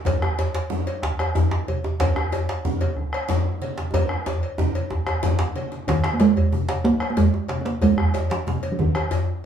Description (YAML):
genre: west african traditional, West African drum ensemble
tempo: 124 BPM (dotted quarters)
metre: 12/8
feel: straight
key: unclear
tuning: A4 = 440 Hz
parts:
  - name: bombo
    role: percussion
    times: 0.1-9.1 s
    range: none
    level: -27 LUFS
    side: equal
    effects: none
  - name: congas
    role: percussion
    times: 0.1-9.1 s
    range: none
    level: -31 LUFS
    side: right 4 dB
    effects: none
  - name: cowbell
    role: percussion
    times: 0.1-9.3 s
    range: none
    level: -31 LUFS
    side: left 3 dB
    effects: none
  - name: djembe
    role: percussion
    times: 0.1-9.3 s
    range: none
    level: -26 LUFS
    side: left 3 dB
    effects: none
  - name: djembe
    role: percussion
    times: 0.1-9.1 s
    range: none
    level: -25 LUFS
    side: right 1 dB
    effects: none
  - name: talking drum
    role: melody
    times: 5.9-9.4 s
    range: Eb3 to C4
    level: -20 LUFS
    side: right 3 dB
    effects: none
room: wet studio ambience, RT60 0.5 s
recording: band playing live in one room, studio reverb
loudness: -20 LUFS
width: side -8 dB against mid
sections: 0.0-5.9 A section; 5.9-9.5 B section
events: drum fill 3.9-5.9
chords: none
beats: | 0.05 0.54 1.02 1.51 | 2.00 2.48 2.97 3.45 | 3.94 4.42 4.91 5.39 | 5.88 6.36 6.85 7.33 | 7.82 8.30 8.79 9.27